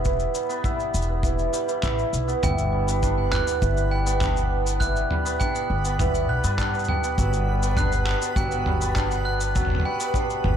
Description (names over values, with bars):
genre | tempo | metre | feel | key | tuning
folktronica | 101 BPM | 4/4 | straight | unclear | A4 = 440 Hz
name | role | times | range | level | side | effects
hammered dulcimer | arpeggios | 0.0-10.6 s | E3 to G4 | -26 LUFS | right 1 dB | ping-pong delay
upright bass | bass | 0.0-10.6 s | E1 to G2 | -25 LUFS | equal | none
lo-fi sampler-style drum kit | drums | 0.0-10.6 s | handclaps, shaker, toms | -29 LUFS | equal | none
kick drum | drums | 0.1-10.3 s | none | -28 LUFS | equal | none
glockenspiel with hard plastic mallets | second line | 2.4-10.1 s | G5 to F#6 | -29 LUFS | right 2 dB | digital delay
backwards swelling texture | texture | 3.2-10.6 s | B4 to B5 | -37 LUFS | left 2 dB | built-in reverb
room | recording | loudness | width
light reverb, small room ambience | dark, warm production | -21 LUFS | side -9 dB against mid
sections
0.0-2.4 A section; 2.4-10.6 B section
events
none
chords
0.0 Em; 2.4 Em7/G; 7.2 Gmaj7